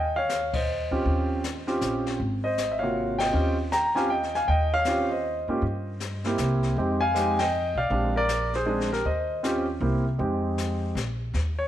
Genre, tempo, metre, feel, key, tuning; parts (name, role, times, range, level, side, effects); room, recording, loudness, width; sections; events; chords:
jazz piano trio; 158 BPM; 3/4; swing 63% on 8ths; Eb mixolydian; A4 = 440 Hz
warm grand piano; melody; 0.0-11.7 s; C3 to Bb5; -25 LUFS; equal; slapback echo
upright bass; bass; 0.0-11.7 s; Ab1 to Ab2; -29 LUFS; equal
jazz brush drum kit; drums; 0.3-11.7 s; brushed snare drum, hi-hat, kick drum, ride cymbal, snare drum; -36 LUFS; left 4 dB
light reverb, small room ambience; 1960s-style stereo; -23 LUFS; side -12 dB against mid
0.0-11.3 A section
band accent 0.5, 3.1, 7.3
0.0 Eb13; 2.2 Ab13; 3.3 Eb13; 5.6 Cm/G; 6.4 C7; 6.8 Fm7; 7.9 Bb13; 9.0 Eb13; 9.8 C7; 10.2 Fm7; 11.0 N.C.